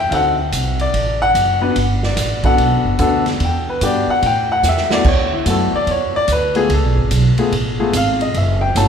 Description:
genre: jazz piano trio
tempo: 146 BPM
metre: 4/4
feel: swing 65% on 8ths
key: unclear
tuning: A4 = 440 Hz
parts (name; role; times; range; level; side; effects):
- warm upright piano; melody; 0.0-8.9 s; A3 to A5; -16 LUFS; left 2 dB; none
- upright bass; bass; 0.0-8.9 s; F#1 to A2; -18 LUFS; right 1 dB; none
- vintage drum kit; drums; 0.1-8.9 s; crash cymbal, hi-hat, kick drum, ride cymbal, snare drum; -23 LUFS; right 2 dB; none
room: moderate church reverb, RT60 3.6 s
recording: recorded in a church or concert hall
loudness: -14 LUFS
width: side -7 dB against mid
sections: 0.0-8.9 A section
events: upright piano solo 0.0-8.9; drum fill 4.6-5.1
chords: 0.1 D7; 1.8 Gmaj7; 3.4 Em7; 4.2 A5; 5.1 D69; 6.7 C#7b13 (rootless); 8.3 F#m7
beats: | 0.11 0.53 0.94 1.35 | 1.76 2.17 2.58 3.00 | 3.41 3.82 4.23 4.64 | 5.05 5.47 5.88 6.29 | 6.70 7.11 7.52 7.93 | 8.34 8.75

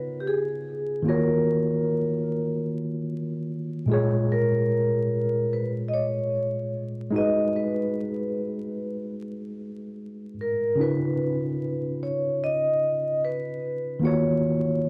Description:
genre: hip hop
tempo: 74 BPM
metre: 4/4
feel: swing 58% on 16ths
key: Eb minor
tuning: A4 = 442 Hz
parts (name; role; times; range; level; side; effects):
- vibraphone with soft mallets; melody; 0.0-14.9 s; G4 to Eb5; -29 LUFS; equal; low-pass filter, analog delay
- tine electric piano; accompaniment; 0.0-14.9 s; Bb2 to Db5; -29 LUFS; equal; overdrive, low-pass filter
room: light reverb, studio reverb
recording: vinyl crackle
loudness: -26 LUFS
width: mono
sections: 0.0-14.9 A section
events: none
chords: 0.0 Db9; 1.1 Ebm9; 3.9 Bbm7; 7.1 Abm7; 10.8 Db9; 14.0 Ebm9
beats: 0.25 | 1.06 1.87 2.68 3.49 | 4.30 5.11 5.92 6.74 | 7.55 8.36 9.17 9.98 | 10.79 11.60 12.41 13.22 | 14.03 14.84

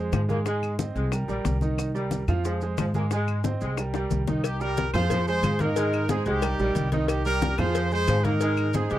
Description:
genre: latin, salsa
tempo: 181 BPM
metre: 4/4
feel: straight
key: C minor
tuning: A4 = 439 Hz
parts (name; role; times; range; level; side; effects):
- bright grand piano; accompaniment; 0.0-9.0 s; Eb3 to Ab5; -30 LUFS; right 4 dB; none
- upright bass; bass; 0.0-9.0 s; Bb1 to Ab2; -27 LUFS; equal; none
- mellow saxophone section; second line; 0.1-9.0 s; F3 to Bb3; -32 LUFS; left 2 dB; none
- bongos and cowbell; percussion; 0.1-9.0 s; none; -34 LUFS; left 11 dB; none
- claves; percussion; 0.1-8.7 s; none; -40 LUFS; left 8 dB; none
- congas; percussion; 0.1-9.0 s; none; -30 LUFS; left 2 dB; none
- maracas; percussion; 0.1-9.0 s; none; -44 LUFS; right 6 dB; none
- brilliant horn section; melody; 4.3-9.0 s; C4 to C5; -28 LUFS; equal; none
room: little or no reverb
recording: dry, close 1970s-style studio recording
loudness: -23 LUFS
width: side -13 dB against mid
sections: 0.0-4.4 A section; 4.4-9.0 B section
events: drum fill 3.9-4.4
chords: 0.5 Ab; 1.1 Cm7; 2.4 Fm; 3.1 Ab; 3.8 Cm7; 5.1 Fm; 5.8 Ab; 6.4 Cm7; 7.7 Fm; 8.4 Ab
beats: 0.13 | 0.46 0.79 1.12 1.45 | 1.79 2.12 2.45 2.78 | 3.11 3.44 3.78 4.11 | 4.44 4.77 5.10 5.43 | 5.76 6.09 6.42 6.76 | 7.09 7.42 7.75 8.08 | 8.41 8.74

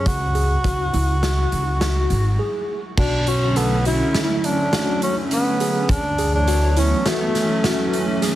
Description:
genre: progressive instrumental, band music in an uneven meter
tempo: 103 BPM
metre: 5/4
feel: straight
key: unclear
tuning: A4 = 438 Hz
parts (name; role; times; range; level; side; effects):
- breathy tenor saxophone; melody; 0.0-8.2 s; A3 to F#4; -23 LUFS; equal; tape echo
- tine electric piano; arpeggios; 0.0-8.4 s; E4 to A4; -26 LUFS; left 2 dB; overdrive, fast stereo tremolo
- upright bass; bass; 0.0-6.9 s; G#1 to D2; -20 LUFS; equal; none
- raw garage drum kit; drums; 0.1-8.4 s; crash cymbal, hi-hat, kick drum, snare drum; -25 LUFS; equal; none
- hollow soft pad; accompaniment; 3.4-8.4 s; D3 to C#5; -23 LUFS; right 1 dB; chorus
room: light reverb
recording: heavily compressed radio sound, multiband compression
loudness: -17 LUFS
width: side -14 dB against mid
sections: 0.0-3.0 A section; 3.0-8.4 B section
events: break 2.4-3.0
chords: 0.1 C#sus4; 3.0 Bm7; 5.9 Dmaj7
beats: | 0.07 0.65 1.23 1.81 2.40 | 2.98 3.56 4.15 4.73 5.31 | 5.89 6.48 7.06 7.64 8.22

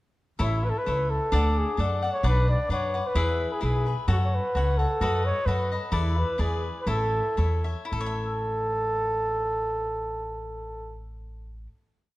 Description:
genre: mexican folk, mariachi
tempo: 104-132 BPM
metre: 2/4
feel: straight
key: A major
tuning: A4 = 440 Hz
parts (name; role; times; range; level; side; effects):
- dark trumpet; melody; 0.4-11.0 s; E4 to D5; -28 LUFS; equal; none
- cavaquinho; accompaniment; 0.4-11.8 s; D4 to F#5; -31 LUFS; left 3 dB; none
- upright bass; bass; 0.4-11.7 s; A1 to F#2; -27 LUFS; equal; none
room: moderate recital hall reverb, RT60 1.6 s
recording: dark, warm production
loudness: -24 LUFS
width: side -18 dB against mid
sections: 0.4-7.9 A section; 7.9-10.2 final chord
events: slowing down 5.9-7.9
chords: 0.4 A; 1.3 D; 2.2 Bm; 3.2 E; 4.1 F#m; 5.0 B7/F#; 5.9 E7sus4; 6.4 E7; 6.9 A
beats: | 0.41 0.87 | 1.33 1.79 | 2.25 2.70 | 3.16 3.62 | 4.08 4.54 | 5.00 5.46 | 5.92 6.39 | 6.87 7.38 | 7.93 8.50 | 9.06 9.63

